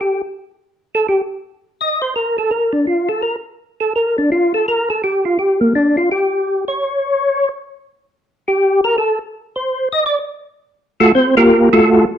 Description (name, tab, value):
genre	jazz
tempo	167 BPM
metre	4/4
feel	swing 63% on 8ths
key	G minor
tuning	A4 = 438 Hz
part	percussive tonewheel organ	solo	0.0-12.1 s	A3 to Eb5	-13 LUFS	equal	slow rotary speaker, chorus vibrato
room	moderate large studio reverb, RT60 0.9 s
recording	dark, warm production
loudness	-14 LUFS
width	side -9 dB against mid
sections	0.0-12.2 A section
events	tonewheel organ solo 0.0-12.2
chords	0.0 N.C.; 9.7 Adim7; 11.1 Gm7